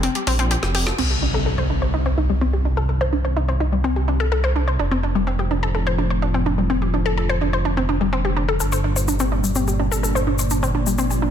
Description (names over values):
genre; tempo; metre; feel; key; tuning
melodic techno; 126 BPM; 4/4; straight; C dorian; A4 = 437 Hz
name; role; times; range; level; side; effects
analog pluck; arpeggios; 0.0-11.3 s; G3 to C5; -22 LUFS; left 1 dB; chorus, ping-pong delay
swelling detuned saw bass; bass; 0.0-11.3 s; F1 to C2; -21 LUFS; equal; none
deep house drum kit; drums; 0.0-1.1 s; crash cymbal, hi-hat, snare drum; -26 LUFS; left 2 dB; none
dark analog pad; sustained chords; 1.0-11.3 s; G3 to D5; -28 LUFS; equal; wide subtle chorus
impact; sound effects; 1.0-2.9 s; none; -27 LUFS; equal; none
tube shaker; percussion; 8.6-11.2 s; none; -28 LUFS; left 7 dB; none
room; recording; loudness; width
light reverb, digital ambience; dense, heavily limited modern master; -18 LUFS; side -9 dB against mid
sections
1.0-11.3 A section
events
drum fill 0.6-1.0; impact 1.0-2.9; filter sweep on analog synth pad 1.0-11.3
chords
0.0 Bb5; 1.0 Cm; 4.8 F6; 8.6 Gm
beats
0.03 0.51 | 0.98 1.46 1.94 2.41 | 2.89 3.37 3.84 4.32 | 4.79 5.27 5.75 6.22 | 6.70 7.17 7.65 8.13 | 8.60 9.08 9.56 10.03 | 10.51 10.98